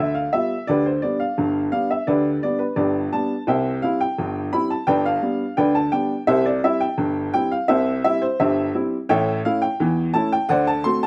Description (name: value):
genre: ragtime piano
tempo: 85 BPM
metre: 2/4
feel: straight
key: C major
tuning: A4 = 440 Hz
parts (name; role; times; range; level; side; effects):
- clear upright piano; solo; 0.0-11.1 s; G1 to C6; -21 LUFS; equal; none
room: light reverb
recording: recorded outdoors, with no room sound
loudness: -21 LUFS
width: mono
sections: 0.0-11.1 A section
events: none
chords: 0.0 G7; 0.7 G; 3.5 C; 4.9 G; 6.3 C; 9.1 A; 10.5 D7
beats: | 0.67 1.37 | 2.07 2.78 | 3.48 4.18 | 4.89 5.59 | 6.29 7.00 | 7.70 8.40 | 9.10 9.80 | 10.51